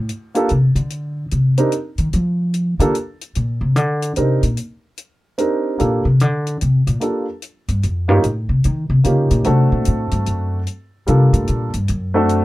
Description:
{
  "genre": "jazz piano trio",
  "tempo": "148 BPM",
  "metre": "3/4",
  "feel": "swing 65% on 8ths",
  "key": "G minor",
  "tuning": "A4 = 441 Hz",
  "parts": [
    { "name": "upright bass", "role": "bass", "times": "0.0-12.4 s", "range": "F2 to F3", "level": "-16 LUFS", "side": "equal", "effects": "none" },
    { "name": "hi-hat", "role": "drums", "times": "0.1-12.4 s", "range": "none", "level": "-32 LUFS", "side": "left 5 dB", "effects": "none" },
    { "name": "warm baby grand piano", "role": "melody", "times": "0.3-12.4 s", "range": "G3 to Bb4", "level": "-18 LUFS", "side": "right 1 dB", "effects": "none" }
  ],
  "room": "little or no reverb",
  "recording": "dark, warm production",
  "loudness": "-16 LUFS",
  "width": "side -17 dB against mid",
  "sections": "0.0-12.4 A section",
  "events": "upright bass solo 0.0-12.4",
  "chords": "0.0 Gsus2 (rootless); 0.9 Cmadd9; 2.1 N.C.; 3.4 Cm9; 5.8 Gm7; 8.2 Eb7; 9.5 D7; 10.7 Gm9; 11.9 D7"
}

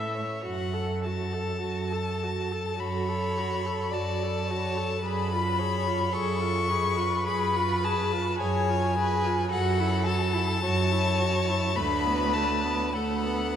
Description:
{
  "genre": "classical, slow romantic movement for string quartet",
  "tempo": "46-55 BPM",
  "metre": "4/4",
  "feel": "rubato",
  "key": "F# minor",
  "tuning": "A4 = 440 Hz",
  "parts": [
    { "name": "clear violin", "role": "second line", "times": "0.0-13.6 s", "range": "A4 to D5", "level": "-32 LUFS", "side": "left 2 dB", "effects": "none" },
    { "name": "clear viola", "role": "accompaniment", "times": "0.0-13.6 s", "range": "A3 to E5", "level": "-31 LUFS", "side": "right 2 dB", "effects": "none" },
    { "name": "rich cello", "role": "bass", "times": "0.0-13.6 s", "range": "D2 to A2", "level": "-30 LUFS", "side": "right 2 dB", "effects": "none" },
    { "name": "clear violin", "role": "melody", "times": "0.5-13.6 s", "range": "F#5 to C#6", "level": "-30 LUFS", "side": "left 5 dB", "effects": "none" }
  ],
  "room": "wet cathedral reverb, RT60 7.2 s",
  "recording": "in a vast, echoing space",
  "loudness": "-25 LUFS",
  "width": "side -9 dB against mid",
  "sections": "0.5-13.6 A section",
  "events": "none",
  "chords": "0.5 F#m; 5.1 C#7/F#; 9.5 F#m7; 11.8 D6"
}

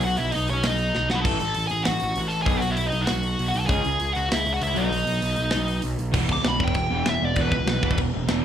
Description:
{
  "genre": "punk rock",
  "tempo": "196 BPM",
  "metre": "4/4",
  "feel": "straight",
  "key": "E major",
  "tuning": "A4 = 439 Hz",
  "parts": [
    { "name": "dark smooth lead guitar", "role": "melody", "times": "0.0-8.0 s", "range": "C#4 to D6", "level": "-25 LUFS", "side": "left 1 dB", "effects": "overdrive, slapback echo" },
    { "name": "fuzz picked electric bass", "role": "bass", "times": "0.0-8.4 s", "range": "E1 to C#2", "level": "-26 LUFS", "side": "right 1 dB", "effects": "overdrive" },
    { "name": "tight metal drum kit", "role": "drums", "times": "0.0-8.4 s", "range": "crash cymbal, hi-hat, kick drum, snare drum", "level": "-28 LUFS", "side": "equal", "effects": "none" },
    { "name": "crunchy overdriven guitar", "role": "riff", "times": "1.2-8.4 s", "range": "E2 to C#4", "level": "-26 LUFS", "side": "right 1 dB", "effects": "slapback echo" }
  ],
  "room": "little or no reverb",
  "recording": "live gig heard through the venue's PA, club reverb",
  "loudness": "-21 LUFS",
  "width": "side -9 dB against mid",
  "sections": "0.0-6.1 A section; 6.1-8.4 B section",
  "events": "half time 0.0-6.1; drum fill 0.9-1.2; lead electric guitar solo 6.1-8.4",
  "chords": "0.0 B; 1.2 A5; 2.5 B; 3.7 C#m; 4.8 B; 6.1 E5"
}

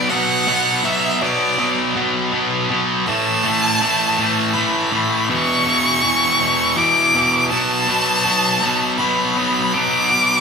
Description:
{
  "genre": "rock",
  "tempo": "81 BPM",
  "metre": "3/4",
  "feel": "straight",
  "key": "B minor",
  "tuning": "A4 = 442 Hz",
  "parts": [
    { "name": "clear violin", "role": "melody", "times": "0.0-10.4 s", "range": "D5 to D6", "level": "-18 LUFS", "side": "equal", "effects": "none" },
    { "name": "distorted electric guitar", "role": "riff", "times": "0.0-10.4 s", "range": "E2 to B3", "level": "-17 LUFS", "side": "equal", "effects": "distortion" }
  ],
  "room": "moderate large studio reverb, RT60 0.9 s",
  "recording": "band playing live in one room",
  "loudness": "-15 LUFS",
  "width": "side -5 dB against mid",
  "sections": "0.0-10.4 A section",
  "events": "none",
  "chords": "0.0 Bm; 3.1 A5; 5.3 E5; 7.5 Bm7"
}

